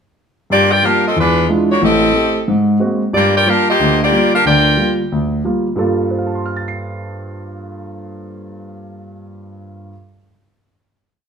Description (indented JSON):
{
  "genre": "jazz",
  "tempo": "182 BPM",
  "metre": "4/4",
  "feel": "swing 62% on 8ths",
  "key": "G minor",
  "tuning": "A4 = 441 Hz",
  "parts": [
    { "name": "bright saxophone section", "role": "melody", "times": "0.5-5.0 s", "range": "G#3 to G5", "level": "-13 LUFS", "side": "left 1 dB", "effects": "none" },
    { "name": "warm grand piano", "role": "accompaniment", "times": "0.5-10.2 s", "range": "A1 to C7", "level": "-17 LUFS", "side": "equal", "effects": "none" }
  ],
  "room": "moderate large studio reverb, RT60 1.1 s",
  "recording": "minimal, uncompressed stereo recording",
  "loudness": "-12 LUFS",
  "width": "side -6 dB against mid",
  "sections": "0.5-5.8 A section; 5.8-8.4 final chord",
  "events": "none",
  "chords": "0.5 Gm7; 1.2 E7b9; 1.8 Am7b5; 2.5 Ab9; 3.1 Gm7"
}